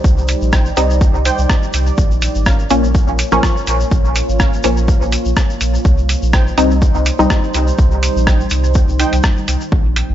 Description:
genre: dub techno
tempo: 124 BPM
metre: 4/4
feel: swing 54% on 16ths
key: unclear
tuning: A4 = 439 Hz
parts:
  - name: deep dark ambient pad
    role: sustained chords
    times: 0.0-10.1 s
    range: G3 to D5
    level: -23 LUFS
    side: right 1 dB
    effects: chorus, built-in reverb, sidechain pumping
  - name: warm sub bass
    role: bass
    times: 0.0-10.1 s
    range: Ab1 to C2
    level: -16 LUFS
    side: equal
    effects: sidechain pumping
  - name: electronic kick drum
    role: drums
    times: 0.0-9.8 s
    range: none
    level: -14 LUFS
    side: equal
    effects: overdrive
  - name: tube shaker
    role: percussion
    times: 0.0-9.7 s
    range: none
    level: -29 LUFS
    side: left 5 dB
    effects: none
  - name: lo-fi sampler-style drum kit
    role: drums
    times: 0.3-10.1 s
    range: hi-hat, rim click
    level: -20 LUFS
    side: right 1 dB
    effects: overdrive
  - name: warbly lo-fi synth keys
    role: riff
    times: 0.5-9.1 s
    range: Db4 to G5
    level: -25 LUFS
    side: right 4 dB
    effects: chorus, sidechain pumping, dub echo
  - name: filtered dub chord stab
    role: stabs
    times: 0.8-7.4 s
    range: F3 to Eb4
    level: -18 LUFS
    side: left 1 dB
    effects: chorus, phaser, sidechain pumping, dub echo
room: light reverb, digital ambience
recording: nothing above 7.6 kHz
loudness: -12 LUFS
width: side -12 dB against mid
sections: 0.0-9.7 A section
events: none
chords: 0.0 Cm; 2.0 Bbm; 5.8 Cm

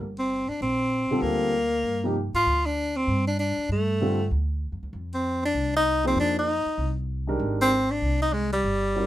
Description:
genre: modal jazz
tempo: 194 BPM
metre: 4/4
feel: swing 61% on 8ths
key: G phrygian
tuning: A4 = 439 Hz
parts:
  - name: warm grand piano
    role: accompaniment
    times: 0.0-9.1 s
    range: C3 to C5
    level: -28 LUFS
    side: equal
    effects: none
  - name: upright bass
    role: bass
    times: 0.0-9.1 s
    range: G1 to Ab2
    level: -29 LUFS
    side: equal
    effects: none
  - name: warm tenor saxophone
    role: melody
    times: 0.2-9.1 s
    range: G3 to F4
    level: -24 LUFS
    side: equal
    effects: none
room: light reverb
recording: minimal, uncompressed stereo recording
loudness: -23 LUFS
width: side -14 dB against mid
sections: 0.0-9.1 A section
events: none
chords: 0.0 Gm11; 4.9 Fm11

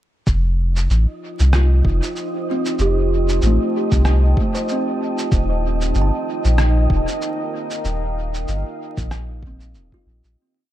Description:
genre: ambient dub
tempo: 95 BPM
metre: 4/4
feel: swing 57% on 16ths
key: F mixolydian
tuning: A4 = 440 Hz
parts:
  - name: deep dark ambient pad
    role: sustained chords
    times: 1.1-10.4 s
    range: Eb4 to A5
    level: -26 LUFS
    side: right 2 dB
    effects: chorus, built-in reverb
  - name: soft dub sub bass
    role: bass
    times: 0.3-10.4 s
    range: Eb1 to C2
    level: -17 LUFS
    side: equal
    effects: none
  - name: electronic kick drum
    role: drums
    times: 0.3-10.0 s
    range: none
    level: -20 LUFS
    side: equal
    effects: none
  - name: electronic shaker and rim click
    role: drums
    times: 0.3-10.3 s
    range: none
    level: -28 LUFS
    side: equal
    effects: dub echo
  - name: wind-like tuned noise texture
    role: texture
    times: 0.9-10.4 s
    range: Eb4 to Eb5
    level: -30 LUFS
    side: left 1 dB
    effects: built-in reverb
  - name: kalimba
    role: arpeggios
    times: 1.6-10.7 s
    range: A3 to A5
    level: -25 LUFS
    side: right 1 dB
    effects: tape echo
room: little or no reverb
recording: dark, warm production, vinyl crackle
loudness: -17 LUFS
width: side -13 dB against mid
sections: 0.3-10.4 groove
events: fade-out 7.0-10.4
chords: 0.3 F7; 5.3 Ebadd9

